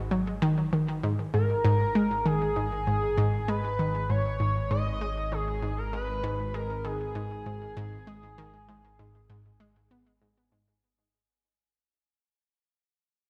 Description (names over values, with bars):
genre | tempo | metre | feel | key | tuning
ambient, sequencer-driven space music | 98 BPM | 4/4 | straight | G# minor | A4 = 441 Hz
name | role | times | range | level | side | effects
analog drone | bass | 0.0-10.8 s | G#1 | -38 LUFS | equal | chorus
analog pluck | riff | 0.1-10.8 s | G#2 to B3 | -30 LUFS | equal | chorus, delay
pulse-width lead | melody | 1.3-10.2 s | G#4 to D#5 | -34 LUFS | equal | chorus, delay
room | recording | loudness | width
moderate concert hall reverb, RT60 2.1 s | none | -28 LUFS | mono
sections
0.0-10.8 A section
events
fade-out 1.0-10.8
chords
0.0 G#5